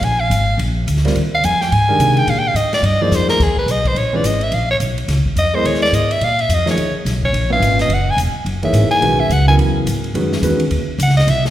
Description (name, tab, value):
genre	modal jazz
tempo	213 BPM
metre	4/4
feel	swing 61% on 8ths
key	Eb phrygian from 3.4 s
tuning	A4 = 439 Hz
part	growling soprano saxophone	melody	0.0-11.5 s	Ab4 to Ab5	-17 LUFS	equal	none
part	upright bass	bass	0.0-11.5 s	Fb1 to C3	-17 LUFS	equal	none
part	open jazz drum kit	drums	0.0-11.5 s	crash cymbal, hi-hat, kick drum, ride cymbal, snare drum	-26 LUFS	left 1 dB	none
part	warm concert grand piano	accompaniment	1.0-10.6 s	Bb2 to Fb5	-20 LUFS	equal	none
room	moderate scoring stage reverb, RT60 1.6 s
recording	heard from further back in the room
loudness	-13 LUFS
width	side -13 dB against mid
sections	0.0-3.4 A section; 3.4-11.5 A section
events	soprano saxophone solo 0.0-11.5; drum fill 3.1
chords	0.0 Bb9sus4; 3.4 Eb9sus4; 7.9 Gb9sus4